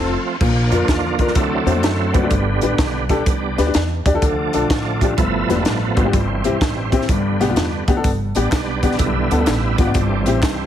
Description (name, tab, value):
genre	uptempo gospel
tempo	126 BPM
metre	4/4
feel	swing 66% on 8ths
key	unclear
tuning	A4 = 444 Hz
part	clear upright piano	accompaniment	0.0-10.7 s	G2 to D5	-21 LUFS	left 4 dB	none
part	bright tonewheel organ	sustained chords	0.0-10.7 s	D3 to A4	-22 LUFS	right 4 dB	slow rotary speaker, overdrive, chorus vibrato
part	upright bass	bass	0.0-10.7 s	E1 to F#2	-22 LUFS	right 1 dB	none
part	crisp fusion drum kit	drums	0.4-10.6 s	crash cymbal, hi-hat, kick drum, snare drum	-20 LUFS	equal	none
part	tambourine and handclaps	percussion	8.0-10.6 s	none	-34 LUFS	equal	none
room	light reverb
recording	heavily compressed radio sound, multiband compression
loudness	-15 LUFS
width	side -10 dB against mid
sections	0.4-10.7 A section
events	band accent 0.0-0.4; tonewheel organ solo 0.4-10.7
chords	0.4 Bb; 1.4 D7; 2.3 G; 4.2 Dm; 5.2 G7; 6.1 C/G; 7.1 G; 9.9 C/G